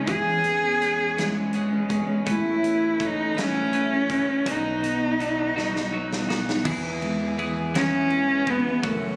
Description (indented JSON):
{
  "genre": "six-eight pop ballad",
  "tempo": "55 BPM (dotted quarters)",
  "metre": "6/8",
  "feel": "straight",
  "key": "E major",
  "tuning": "A4 = 440 Hz",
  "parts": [
    { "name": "warm cello", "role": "melody", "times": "0.0-9.2 s", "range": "G#3 to G#4", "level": "-25 LUFS", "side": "equal", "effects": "none" },
    { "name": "fingerpicked steel-string acoustic guitar", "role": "accompaniment", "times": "0.0-9.2 s", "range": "F#2 to C#5", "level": "-33 LUFS", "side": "equal", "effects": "double-tracked" },
    { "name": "twelve-string electric guitar", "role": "arpeggios", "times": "0.0-9.2 s", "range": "F#2 to B4", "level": "-34 LUFS", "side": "equal", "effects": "none" },
    { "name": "upright bass", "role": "bass", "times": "0.0-9.2 s", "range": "A1 to F#2", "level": "-41 LUFS", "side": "equal", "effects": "none" },
    { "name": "huge arena drum kit", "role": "drums", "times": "0.1-9.0 s", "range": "crash cymbal, hi-hat, kick drum, ride cymbal, snare drum", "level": "-35 LUFS", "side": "equal", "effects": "none" }
  ],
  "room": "light reverb, small room ambience",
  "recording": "recorded on a phone in the room, club reverb, compression",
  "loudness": "-24 LUFS",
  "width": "mono",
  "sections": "0.0-6.6 A section; 6.6-9.2 B section",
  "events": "drum fill 5.6-6.6",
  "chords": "0.1 E6; 2.3 Aadd9; 4.5 B; 6.6 E"
}